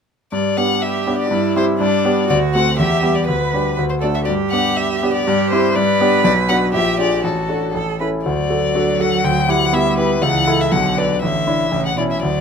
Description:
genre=quick classical-period movement for piano trio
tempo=121 BPM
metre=2/4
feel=straight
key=G major, D major from 6.2 s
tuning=A4 = 440 Hz
part: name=rich violin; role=melody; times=0.3-12.4 s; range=A4 to G5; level=-20 LUFS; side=left 6 dB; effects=none
part: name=bright concert grand piano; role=accompaniment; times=0.3-12.4 s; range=A1 to B4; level=-17 LUFS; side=equal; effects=none
part: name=clear cello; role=second line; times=0.8-12.4 s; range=B2 to B4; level=-22 LUFS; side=right 8 dB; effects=none
room=little or no reverb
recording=close, detailed microphones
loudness=-15 LUFS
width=side -6 dB against mid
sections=0.3-8.3 A section; 8.3-12.4 B section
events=none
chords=0.3 G; 1.3 C/G; 1.8 G; 2.3 D7; 2.8 Em; 3.3 G/D; 3.8 D; 4.3 G; 5.3 C/G; 5.8 G; 6.2 Bm; 6.7 Bb7; 7.2 D/A; 7.8 A; 8.3 D; 9.2 Em7/D; 10.2 A/C#; 10.7 Bm; 11.2 Asus4; 11.7 A

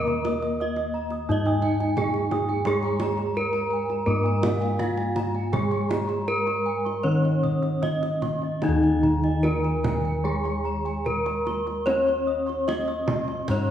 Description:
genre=Javanese gamelan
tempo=74-87 BPM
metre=4/4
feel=straight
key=Eb slendro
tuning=A4 = 440 Hz
part: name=gamelan-type bronze metallophone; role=melody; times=0.0-13.7 s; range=Eb4 to Eb5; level=-27 LUFS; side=right 1 dB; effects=none
part: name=gamelan-type bronze metallophone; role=accompaniment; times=0.0-13.7 s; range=Eb3 to Eb4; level=-30 LUFS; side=left 2 dB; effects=none
part: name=gamelan-type bronze metallophone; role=arpeggios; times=0.0-13.7 s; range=Eb5 to Eb6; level=-35 LUFS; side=right 3 dB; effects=none
part: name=gamelan-type bossed gongs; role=bass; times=0.0-13.7 s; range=Eb2 to Db5-45c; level=-27 LUFS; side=equal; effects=none
part: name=gamelan-type bossed gongs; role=arpeggios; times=0.1-13.7 s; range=Eb5 to Db6-45c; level=-35 LUFS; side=left 1 dB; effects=none
part: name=kendang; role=percussion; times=0.1-13.7 s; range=none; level=-32 LUFS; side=right 2 dB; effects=none
room=wet recital hall reverb, RT60 1.6 s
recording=heard from further back in the room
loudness=-22 LUFS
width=side -10 dB against mid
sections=0.0-8.6 A section; 8.6-13.7 B section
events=none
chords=none

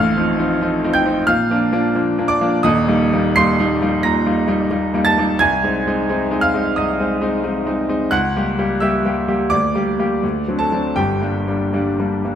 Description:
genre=classical, romantic character piece for solo piano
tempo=86 BPM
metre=4/4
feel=uneven beats, rubato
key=unclear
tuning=A4 = 439 Hz
part: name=bright baby grand piano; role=solo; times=0.0-12.4 s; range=Eb1 to C7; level=-15 LUFS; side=equal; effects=none
room=moderate scoring stage reverb, RT60 1.6 s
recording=close, detailed microphones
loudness=-15 LUFS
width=side -9 dB against mid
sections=0.0-12.4 A section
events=none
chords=0.0 F7/A; 1.3 Bb; 2.6 Eb; 5.4 Ab/C; 8.1 C#dim7; 9.5 Gm/D; 10.2 D7; 11.0 Gm

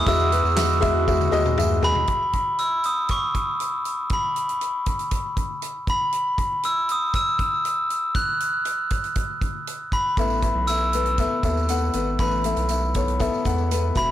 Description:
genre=piano-driven pop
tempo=119 BPM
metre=4/4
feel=straight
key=unclear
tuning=A4 = 441 Hz
part: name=glockenspiel with brass mallets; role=melody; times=0.0-14.1 s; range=B5 to F#6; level=-23 LUFS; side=equal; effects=ping-pong delay
part: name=warm upright piano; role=accompaniment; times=0.0-2.1, 10.2-14.1 s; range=A2 to F#5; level=-24 LUFS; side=left 4 dB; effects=none
part: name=chorused pulse-width pad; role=sustained chords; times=0.0-2.1 s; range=G#3 to G#4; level=-33 LUFS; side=right 5 dB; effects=none
part: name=round analog bass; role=bass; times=0.0-2.0, 10.2-14.1 s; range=E1 to E2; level=-24 LUFS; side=right 1 dB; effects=none
part: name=natural country drum kit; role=drums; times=0.1-14.1 s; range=handclaps, hi-hat, kick drum, snare drum, toms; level=-28 LUFS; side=equal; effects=soft clipping on kick
part: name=tambourine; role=percussion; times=0.1-2.0, 10.2-14.1 s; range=none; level=-39 LUFS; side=right 12 dB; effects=none
room=light reverb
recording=blown-out, overdriven recording, overdrive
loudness=-20 LUFS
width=side -12 dB against mid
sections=0.0-2.1 A section; 2.1-14.1 B section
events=drum fill 1.1-2.1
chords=0.1 Eadd9; 2.1 N.C.; 10.2 Asus2

